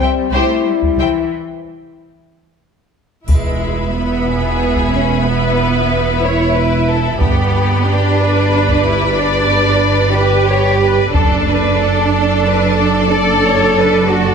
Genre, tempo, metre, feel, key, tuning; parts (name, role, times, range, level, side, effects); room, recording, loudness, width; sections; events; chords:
cinematic, epic orchestral film score; 61 BPM (dotted quarters); 6/8; straight; A4 = 440 Hz
rich symphonic violin section; melody; 0.0-1.1, 4.3-14.3 s; G4 to G5; -20 LUFS; left 3 dB
warm studio violin section; second line; 0.0-14.3 s; G4 to B5; -22 LUFS; left 4 dB
warm studio viola section; accompaniment; 0.0-14.3 s; D4 to C5; -22 LUFS; right 2 dB
warm French horn section; sustained chords; 0.0-14.3 s; C4 to E5; -22 LUFS; left 5 dB
rich symphonic cello section; bass; 0.0-14.3 s; E3 to A4; -18 LUFS; right 2 dB
rich symphonic double bass section; bass; 0.0-14.3 s; E1 to C2; -17 LUFS; right 3 dB
taiko ensemble; drums; 0.8-12.4 s; -18 LUFS; equal
triangle; percussion; 3.3-4.6 s; -41 LUFS; left 1 dB
moderate scoring stage reverb, RT60 1.8 s; -12 LUFS; side -6 dB against mid
0.0-3.3 A section; 3.3-14.3 B section
break 1.3-3.3
0.0 C; 1.3 N.C.; 3.3 E; 7.2 G; 11.1 D/F#